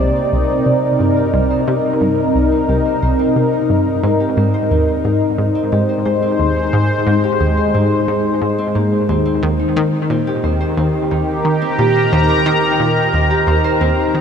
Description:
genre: ambient, sequencer-driven space music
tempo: 89 BPM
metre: 4/4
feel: straight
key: unclear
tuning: A4 = 440 Hz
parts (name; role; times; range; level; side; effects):
- sweeping resonant pad; sustained chords; 0.0-14.2 s; C3 to Bb5; -15 LUFS; left 1 dB; chorus
- Celtic harp; arpeggios; 0.0-14.2 s; Bb3 to C5; -26 LUFS; right 2 dB; auto-pan, analog delay
- analog pluck; riff; 0.0-14.2 s; C2 to Eb3; -17 LUFS; equal; chorus, analog delay
room: wet huge ambient reverb, RT60 8.1 s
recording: dreamy mix soaked in reverb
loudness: -13 LUFS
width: side -7 dB against mid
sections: 0.0-14.2 A section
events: fade-in on harp 0.0-14.2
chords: 0.0 Cm7; 4.0 Ab; 9.4 Eb

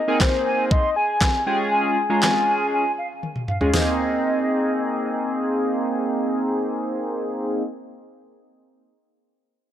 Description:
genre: dance-pop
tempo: 119 BPM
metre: 4/4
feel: straight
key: Ab major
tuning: A4 = 441 Hz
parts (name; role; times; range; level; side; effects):
- soft octave-layered synth lead; melody; 0.0-3.2 s; C5 to Ab5; -23 LUFS; left 3 dB; chorus, low-pass filter
- hollow concert flute; melody; 0.1-5.2 s; Eb5 to C6; -27 LUFS; right 2 dB; sidechain pumping, low-pass filter, tape echo
- chorused polysynth; accompaniment; 0.1-7.6 s; Ab3 to Ab4; -22 LUFS; equal; sidechain pumping, low-pass filter
- pop drum kit; drums; 0.2-3.9 s; handclaps, hi-hat, kick drum, snare drum, toms; -22 LUFS; equal; overdrive
room: light reverb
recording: dry, gritty hardware recording, cassette tape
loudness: -20 LUFS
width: side -10 dB against mid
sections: 0.0-3.7 A section; 3.7-7.8 B section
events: drum fill 3.2-3.7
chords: 0.0 Abadd9; 1.5 Db/Ab; 3.7 Abadd9

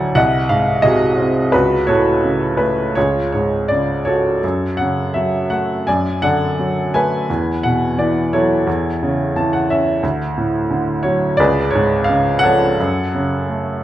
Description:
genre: classical, lyrical solo piano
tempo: 85 BPM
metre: 4/4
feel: uneven beats, rubato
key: F# minor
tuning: A4 = 440 Hz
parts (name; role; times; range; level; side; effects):
- clear upright piano; solo; 0.0-13.8 s; B#1 to A5; -14 LUFS; equal; none
room: moderate recital hall reverb, RT60 1.6 s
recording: dark, warm production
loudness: -14 LUFS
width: side -13 dB against mid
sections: 0.0-13.8 A section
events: upright piano fill 9.0-10.0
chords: 0.2 G#7/B#; 1.5 F#m/C#; 3.0 C#; 4.4 F#m; 5.9 D/F#; 7.3 Esus2; 8.7 A/E; 10.0 D; 11.4 C#7; 12.8 F#m

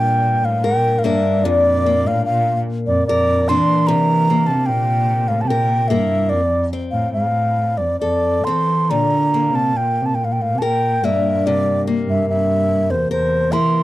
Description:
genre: celtic folk, Celtic slow air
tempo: 73 BPM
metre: 3/4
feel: rubato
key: unclear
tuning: A4 = 439 Hz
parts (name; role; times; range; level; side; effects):
- baroque flute; melody; 0.0-13.8 s; C5 to C6; -18 LUFS; equal; none
- dark cello; second line; 0.0-13.8 s; E2 to E3; -20 LUFS; right 1 dB; none
- picked old ladder-braced acoustic guitar; accompaniment; 0.0-13.8 s; G2 to Bb4; -22 LUFS; left 4 dB; none
room: little or no reverb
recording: dry, close 1970s-style studio recording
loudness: -15 LUFS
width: side -16 dB against mid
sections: 0.0-13.8 A section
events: none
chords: 0.0 Gm; 1.5 Bb; 3.9 C7; 6.3 F6; 8.9 Bb; 11.5 C7

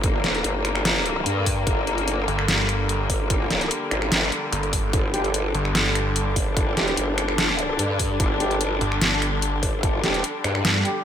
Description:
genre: heavy wobble dubstep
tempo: 147 BPM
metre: 4/4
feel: half-time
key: G minor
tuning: A4 = 440 Hz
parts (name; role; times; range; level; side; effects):
- muted studio string section; sustained chords; 0.0-11.0 s; D3 to D4; -27 LUFS; left 2 dB; sidechain pumping
- growl bass; bass; 0.0-10.6 s; G1 to G2; -25 LUFS; equal; chorus, overdrive
- dubstep drum kit; drums; 0.0-10.9 s; finger snaps, hi-hat, snare drum; -24 LUFS; equal; none
- electronic kick drum; drums; 0.0-9.9 s; none; -25 LUFS; equal; none
- snarling distorted saw bass; bass; 2.3-6.3, 8.8-10.8 s; G1 to G2; -24 LUFS; equal; distortion, overdrive
- mellow brass ensemble; stabs; 5.1-11.0 s; G3 to G4; -30 LUFS; right 1 dB; ping-pong delay
room: little or no reverb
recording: none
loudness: -20 LUFS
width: side -9 dB against mid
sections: 0.0-11.0 A section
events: none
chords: 0.0 G5

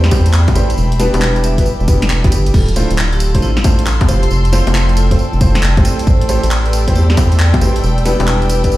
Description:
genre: UK garage, two-step garage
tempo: 136 BPM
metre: 4/4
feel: swing 65% on 16ths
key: unclear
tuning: A4 = 441 Hz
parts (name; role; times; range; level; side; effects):
- vibraphone with hard mallets; melody; 0.0-8.7 s; C4 to E5; -26 LUFS; right 2 dB; tape echo
- airy breathy pad; sustained chords; 0.0-8.8 s; E5 to E6; -28 LUFS; left 1 dB; chorus, sidechain pumping
- rubbery square bass; bass; 0.0-8.7 s; D1 to E2; -13 LUFS; equal; sidechain pumping
- house drum kit; drums; 0.0-8.8 s; bongos, crash cymbal, handclaps, hi-hat, snare drum, tambourine; -20 LUFS; left 1 dB; none
- dark studio string section; texture; 0.0-8.8 s; A4 to C6; -27 LUFS; left 1 dB; sidechain pumping
- warm baby grand piano; stabs; 0.1-8.7 s; G3 to C5; -19 LUFS; equal; digital delay
- electronic kick drum; drums; 0.1-8.7 s; none; -13 LUFS; equal; none
room: digital ambience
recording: played on a big sound system in a bare room, stone room reverb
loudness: -10 LUFS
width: side -16 dB against mid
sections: 0.0-8.8 A section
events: none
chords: 0.0 Am7; 0.8 Em7; 2.5 Dm9; 4.1 Fmaj7; 5.8 Am7; 7.8 Em7

